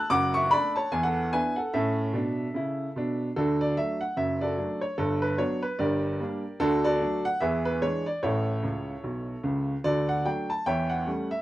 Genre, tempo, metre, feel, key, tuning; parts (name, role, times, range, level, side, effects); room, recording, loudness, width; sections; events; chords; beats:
jazz, stride piano; 148 BPM; 4/4; swing 60% on 8ths; D major; A4 = 440 Hz
warm baby grand piano; solo; 0.0-11.4 s; F#1 to D6; -25 LUFS; equal
light reverb; dry, close 1970s-style studio recording; -25 LUFS; side -15 dB against mid
0.0-3.4 A section; 3.4-11.4 B section
grand piano fill 8.6-9.8
0.1 D/F#; 0.9 E5; 1.7 A; 3.4 D; 4.2 D/F#; 5.0 Gmaj7; 5.8 Gm; 6.6 D; 7.4 E7; 8.2 A; 9.8 D; 10.7 A7/E
| 0.10 0.51 0.92 1.32 | 1.73 2.13 2.54 2.94 | 3.35 3.75 4.16 4.57 | 4.97 5.38 5.79 6.19 | 6.60 7.00 7.41 7.82 | 8.22 8.63 9.03 9.44 | 9.85 10.25 10.66 11.06